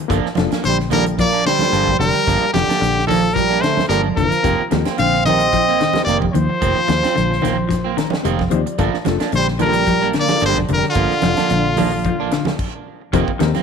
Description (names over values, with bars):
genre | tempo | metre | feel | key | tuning
afrobeat | 110 BPM | 4/4 | swing 54% on 16ths | unclear | A4 = 440 Hz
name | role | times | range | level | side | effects
semi-hollow electric guitar | arpeggios | 0.0-13.6 s | D3 to F3 | -24 LUFS | left 11 dB | none
overdriven reed electric piano | accompaniment | 0.1-13.6 s | Bb3 to Bb5 | -26 LUFS | left 13 dB | tremolo
electric guitar at the edge of break-up | stabs | 0.1-13.6 s | Eb3 to D4 | -25 LUFS | right 11 dB | warbly pitch drift, tape echo
fingered electric bass | bass | 0.1-13.6 s | F1 to Eb2 | -22 LUFS | left 1 dB | none
tight funk drum kit | drums | 0.1-13.6 s | crash cymbal, hi-hat, kick drum, snare drum | -26 LUFS | equal | none
congas | percussion | 0.4-13.6 s | none | -25 LUFS | right 9 dB | none
brilliant trumpet | melody | 0.6-12.6 s | F4 to F5 | -18 LUFS | left 3 dB | none
breathy trombone | second line | 0.7-12.6 s | D3 to C4 | -23 LUFS | right 11 dB | none
room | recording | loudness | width
moderate plate reverb, RT60 1.9 s, studio reverb | 1960s-style stereo with parts hard left and right | -14 LUFS | side -6 dB against mid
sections
0.0-13.1 A section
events
reed electric piano fill 7.7-8.8; stop 12.6-13.1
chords
0.1 Gm7; 4.4 F7sus4; 8.8 Gm7; 13.1 F7sus4